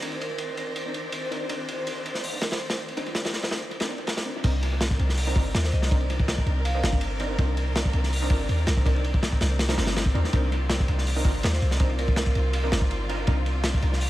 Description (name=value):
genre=drum and bass, jungle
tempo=163 BPM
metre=4/4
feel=straight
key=C minor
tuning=A4 = 440 Hz
part: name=warm studio string section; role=sustained chords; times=0.0-14.1 s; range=Eb3 to D5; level=-34 LUFS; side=left 1 dB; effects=none
part: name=orchestra-hit-like synth stab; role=stabs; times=0.0-13.4 s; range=C4 to Bb4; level=-34 LUFS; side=equal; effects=built-in reverb, analog delay
part: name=crunchy breakbeat drum kit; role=drums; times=0.0-14.1 s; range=crash cymbal, hi-hat, kick drum, ride cymbal, snare drum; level=-26 LUFS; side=equal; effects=high-pass filter on kick, high-pass filter on cymbals, high-pass filter on hats, high-pass filter on snare, high-pass filter on room, analog delay
part: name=wind-like tuned noise texture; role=texture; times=0.0-4.4 s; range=Bb6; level=-44 LUFS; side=right 4 dB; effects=none
part: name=vibraphone with medium hard mallets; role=melody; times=0.2-0.7, 5.6-6.9, 11.5-12.5 s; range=Bb4 to F5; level=-38 LUFS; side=right 2 dB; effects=analog delay
part: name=warm 808-style bass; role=bass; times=4.4-14.1 s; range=G1 to Eb2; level=-25 LUFS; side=equal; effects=none
room=light reverb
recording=echo-heavy mix, vinyl crackle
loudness=-23 LUFS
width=side -15 dB against mid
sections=0.0-4.4 A section; 4.4-14.1 B section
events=drop 4.4-14.1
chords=0.0 Cm9